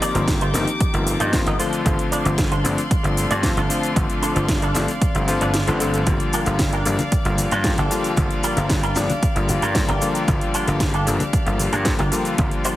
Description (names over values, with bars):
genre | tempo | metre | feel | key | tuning
nu-disco, nu disco | 114 BPM | 4/4 | straight | G minor | A4 = 435 Hz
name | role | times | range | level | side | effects
clear electric grand piano | accompaniment | 0.0-12.8 s | D3 to A4 | -24 LUFS | left 2 dB | sidechain pumping, dub echo
rich chamber string section | sustained chords | 0.0-12.8 s | Eb4 to D6 | -29 LUFS | left 2 dB | sidechain pumping
electric guitar with an envelope filter | riff | 0.0-12.8 s | D4 to Eb5 | -27 LUFS | right 1 dB | ensemble chorus, dub echo
house drum kit | drums | 0.0-12.8 s | hi-hat, shaker, snare drum | -27 LUFS | equal | overdrive
gritty slap bass | bass | 0.1-12.5 s | G1 to G2 | -23 LUFS | equal | overdrive
electronic kick drum | drums | 0.3-12.5 s | none | -23 LUFS | equal | overdrive
maracas and congas | percussion | 6.1-12.8 s | none | -30 LUFS | left 2 dB | none
room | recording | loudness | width
light reverb, digital ambience | heavily compressed radio sound | -18 LUFS | side -15 dB against mid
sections
0.0-12.8 A section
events
kick drops out 5.5-6.1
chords
0.0 F7sus4/G; 1.6 Dm7/G; 6.1 Gm7